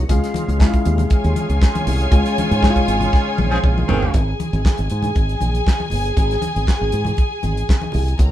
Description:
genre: disco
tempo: 118 BPM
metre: 4/4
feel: straight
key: unclear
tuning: A4 = 441 Hz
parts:
  - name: warm studio string section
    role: second line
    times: 0.0-8.3 s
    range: F4 to Bb5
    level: -23 LUFS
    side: left 1 dB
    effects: none
  - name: dark concert grand piano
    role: accompaniment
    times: 0.0-4.2 s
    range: Eb3 to Gb4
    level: -23 LUFS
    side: left 3 dB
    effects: none
  - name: overdriven tonewheel organ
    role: sustained chords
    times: 0.0-4.1 s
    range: Db3 to F4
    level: -27 LUFS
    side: right 1 dB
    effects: chorus vibrato, slow rotary speaker
  - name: modern bright fingered electric bass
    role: bass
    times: 0.0-8.3 s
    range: G1 to Ab2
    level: -20 LUFS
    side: equal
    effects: none
  - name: damped 70s drum kit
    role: drums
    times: 0.1-8.3 s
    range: handclaps, hi-hat, kick drum, snare drum, toms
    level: -17 LUFS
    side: equal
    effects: none
  - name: congas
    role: percussion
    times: 0.1-8.3 s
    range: none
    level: -28 LUFS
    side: left 2 dB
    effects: none
  - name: warm horn section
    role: stabs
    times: 3.5-4.2 s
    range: Eb3 to Ab4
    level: -23 LUFS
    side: right 3 dB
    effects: none
room: moderate studio reverb, RT60 0.6 s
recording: band playing live in one room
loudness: -15 LUFS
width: side -12 dB against mid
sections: 0.0-4.1 A section; 4.1-8.3 B section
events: band accent 2.1-4.1; drum fill 3.1-4.1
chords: 0.1 Db; 4.1 N.C.

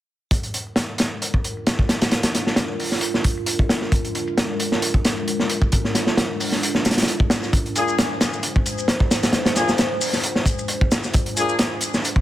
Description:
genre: breakbeat, breaks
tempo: 133 BPM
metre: 4/4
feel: swing 54% on 16ths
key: unclear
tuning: A4 = 436 Hz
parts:
  - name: dark analog pad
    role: sustained chords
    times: 1.1-12.2 s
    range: Ab3 to C5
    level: -27 LUFS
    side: right 1 dB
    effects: chorus, phaser, sidechain pumping
  - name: crunchy breakbeat drum kit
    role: drums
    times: 0.3-12.2 s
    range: hi-hat, kick drum, snare drum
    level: -19 LUFS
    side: equal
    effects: none
  - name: shaker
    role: drums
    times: 0.3-12.1 s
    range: none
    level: -31 LUFS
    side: left 2 dB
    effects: low-pass filter on perc, low-pass filter on room
  - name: mellow brass ensemble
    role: stabs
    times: 7.8-11.6 s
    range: Bb3 to Ab4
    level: -25 LUFS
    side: left 2 dB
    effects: vintage 12-bit sampler grit, dub echo
room: small room ambience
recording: none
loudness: -18 LUFS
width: side -14 dB against mid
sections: 0.3-12.2 A section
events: filter sweep on drum 0.3-12.2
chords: 0.3 Bb7

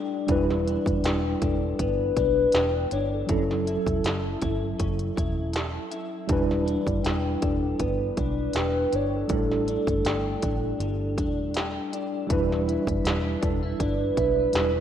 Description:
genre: indie pop, bedroom pop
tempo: 80 BPM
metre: 4/4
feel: swing 55% on 16ths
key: E dorian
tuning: A4 = 440 Hz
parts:
  - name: electric guitar through a small old amp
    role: accompaniment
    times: 0.0-14.8 s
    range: A2 to B4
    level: -31 LUFS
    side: left 4 dB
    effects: analog chorus, vibrato effect
  - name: mellow tine electric piano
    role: accompaniment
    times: 0.0-14.8 s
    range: F#3 to B4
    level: -29 LUFS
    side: right 2 dB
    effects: medium stereo tremolo
  - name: vintage muted fingered electric bass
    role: bass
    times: 0.3-14.8 s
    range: E1 to B1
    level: -30 LUFS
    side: equal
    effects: none
  - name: industrial drum kit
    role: drums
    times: 0.3-14.7 s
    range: hi-hat, kick drum, snare drum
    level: -30 LUFS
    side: equal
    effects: none
  - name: hollow clarinet-like synth lead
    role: melody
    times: 1.4-14.8 s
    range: A4 to C#5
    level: -28 LUFS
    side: equal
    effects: phaser, wide subtle chorus
room: moderate lush hall reverb, RT60 2.3 s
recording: rough home demo mix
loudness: -23 LUFS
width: side -9 dB against mid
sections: 0.0-14.8 A section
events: none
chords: 0.3 Em7; 3.3 F#m7; 6.3 Em7; 9.3 A7sus4; 12.3 Em7

